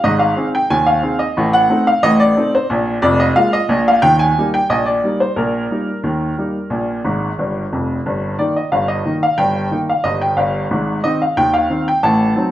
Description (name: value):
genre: ragtime piano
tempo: 90 BPM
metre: 2/4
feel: straight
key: Eb major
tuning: A4 = 440 Hz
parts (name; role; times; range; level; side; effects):
- clear upright piano; solo; 0.0-12.5 s; F1 to A5; -14 LUFS; equal; none
room: moderate large studio reverb, RT60 1.4 s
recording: band playing live in one room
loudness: -14 LUFS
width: side -13 dB against mid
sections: 0.0-12.5 A section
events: upright piano fill 7.0-8.0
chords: 0.0 Ab; 1.4 Adim; 2.7 Bb5; 4.0 Eb/Bb; 6.7 Bb5; 8.0 Eb/G; 10.7 Ab